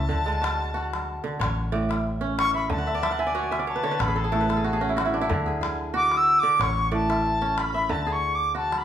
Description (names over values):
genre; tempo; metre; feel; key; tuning
west african traditional, West African string and xylophone music; 92 BPM; 4/4; straight; D lydian; A4 = 440 Hz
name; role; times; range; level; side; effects
bright reedy wooden flute; melody; 0.0-8.8 s; G#5 to E6; -24 LUFS; left 1 dB; none
kora; arpeggios; 0.0-8.8 s; A2 to F#5; -27 LUFS; right 2 dB; none
hollow-body short-scale fingered electric bass; bass; 0.0-8.8 s; A1 to D2; -30 LUFS; equal; none
calabash; percussion; 0.1-8.8 s; none; -32 LUFS; left 2 dB; none
room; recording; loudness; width
wet large studio reverb, RT60 1.1 s; band playing live in one room; -22 LUFS; side -10 dB against mid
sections
0.0-8.8 A section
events
flute solo 0.0-8.8; kora fill 2.8-5.3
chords
0.1 D; 1.4 A; 2.7 D; 4.0 A; 5.3 D; 6.6 A; 7.9 D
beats
| 0.10 0.75 1.40 2.05 | 2.70 3.35 4.00 4.65 | 5.30 5.95 6.60 7.25 | 7.90 8.55